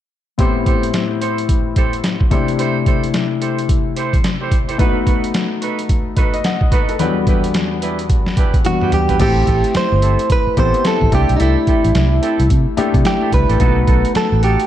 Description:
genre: R&B, new jack swing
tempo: 109 BPM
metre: 4/4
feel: swing 61% on 16ths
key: A dorian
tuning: A4 = 439 Hz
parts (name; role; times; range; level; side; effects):
- warm grand piano; accompaniment; 0.4-14.7 s; E2 to F#5; -20 LUFS; left 6 dB; none
- mellow horn section; stabs; 0.4-14.6 s; B3 to C5; -25 LUFS; right 6 dB; none
- boom bap sampler-style drum kit; drums; 0.4-14.7 s; crash cymbal, hi-hat, kick drum, snare drum, toms; -17 LUFS; equal; none
- direct-recorded clean electric guitar; melody; 8.7-14.7 s; D#4 to C5; -18 LUFS; right 4 dB; none
- vintage muted fingered electric bass; bass; 9.2-14.6 s; G1 to C3; -16 LUFS; equal; none
room: light reverb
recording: dark, warm production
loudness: -13 LUFS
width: side -12 dB against mid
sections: 0.4-9.2 A section; 9.2-14.7 B section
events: drum fill 8.6-9.2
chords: 0.4 Am7; 2.3 C6; 4.8 B7; 7.0 Em7; 9.2 Am7; 11.1 C6; 13.6 B7

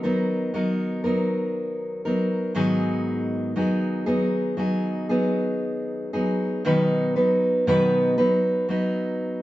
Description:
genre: pop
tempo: 59 BPM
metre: 4/4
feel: straight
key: B major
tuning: A4 = 441 Hz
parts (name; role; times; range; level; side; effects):
- fingerpicked steel-string acoustic guitar; solo; 0.0-9.4 s; G#2 to B4; -21 LUFS; equal; none
room: moderate stone room reverb, RT60 1.0 s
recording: band playing live in one room, nothing above 7.7 kHz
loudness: -21 LUFS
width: side -15 dB against mid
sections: 0.0-6.7 A section; 6.7-9.4 B section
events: none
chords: 0.0 Bmaj7; 2.6 G#m7; 6.7 B

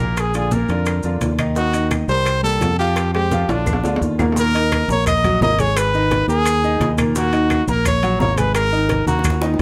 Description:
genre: latin, salsa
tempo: 172 BPM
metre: 4/4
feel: straight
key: Eb minor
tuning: A4 = 440 Hz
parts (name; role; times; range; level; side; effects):
- warm trumpet; melody; 0.0-9.5 s; D4 to Eb5; -22 LUFS; equal; none
- bright concert grand piano; accompaniment; 0.0-9.6 s; Bb2 to Bb5; -25 LUFS; equal; none
- fingered electric bass; bass; 0.0-9.6 s; Ab1 to F2; -23 LUFS; equal; none
- bongos; percussion; 0.2-9.6 s; none; -32 LUFS; equal; none
- claves; percussion; 0.2-9.4 s; none; -33 LUFS; equal; none
- congas; percussion; 0.2-9.6 s; none; -27 LUFS; equal; none
- maracas; percussion; 0.2-9.6 s; none; -37 LUFS; equal; none
- timbales; percussion; 0.2-9.6 s; none; -29 LUFS; equal; none
room: light reverb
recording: none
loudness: -18 LUFS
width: mono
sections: 0.0-4.4 A section; 4.4-9.6 B section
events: drum fill 3.3-4.4, 8.9-9.6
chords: 0.2 Bb; 1.6 Ebm; 2.3 C5; 3.0 Fm; 3.7 Bb; 4.4 Ebm; 5.8 Abmadd9; 7.2 Ebm; 8.5 Absus2

